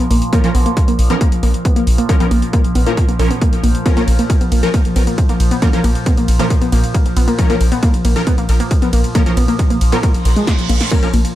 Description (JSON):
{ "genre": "driving peak-time techno", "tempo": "136 BPM", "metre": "4/4", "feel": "straight", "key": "Bb phrygian", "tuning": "A4 = 440 Hz", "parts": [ { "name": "warbly dusty pluck", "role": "riff", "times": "0.0-11.2 s", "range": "Ab3 to Cb4", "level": "-20 LUFS", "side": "equal", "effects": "chorus, sidechain pumping, tape echo" }, { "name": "saturated sub bass", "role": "bass", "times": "0.0-11.2 s", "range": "Bb1", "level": "-17 LUFS", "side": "equal", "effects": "tube saturation, sidechain pumping, low-pass filter" }, { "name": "overtone-sweeping drone", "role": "drone", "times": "0.0-11.3 s", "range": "Bb2 to F3", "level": "-24 LUFS", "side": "right 1 dB", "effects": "chorus, built-in reverb, phaser, sidechain pumping" }, { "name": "techno drum kit", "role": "drums", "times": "0.0-11.3 s", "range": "crash cymbal, hi-hat, ride cymbal, snare drum", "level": "-27 LUFS", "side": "equal", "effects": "overdrive, sidechain pumping on hats, sidechain pumping on cymbals" }, { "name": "rave stab", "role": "stabs", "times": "0.3-11.1 s", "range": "F3 to Bb4", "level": "-21 LUFS", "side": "equal", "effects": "chorus, built-in reverb, sidechain pumping, tape echo" }, { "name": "electronic kick drum", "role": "drums", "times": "0.3-11.0 s", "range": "none", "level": "-15 LUFS", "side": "equal", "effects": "overdrive" }, { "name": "reverse cymbal", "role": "sound effects", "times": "10.2-10.9 s", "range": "none", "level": "-24 LUFS", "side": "right 5 dB", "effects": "none" } ], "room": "light reverb", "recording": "dark, warm production", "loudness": "-12 LUFS", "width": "side -14 dB against mid", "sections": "0.0-11.3 A section", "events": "reverse cymbal 10.2-10.9; drum fill 10.5-10.9", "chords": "0.0 Bbm" }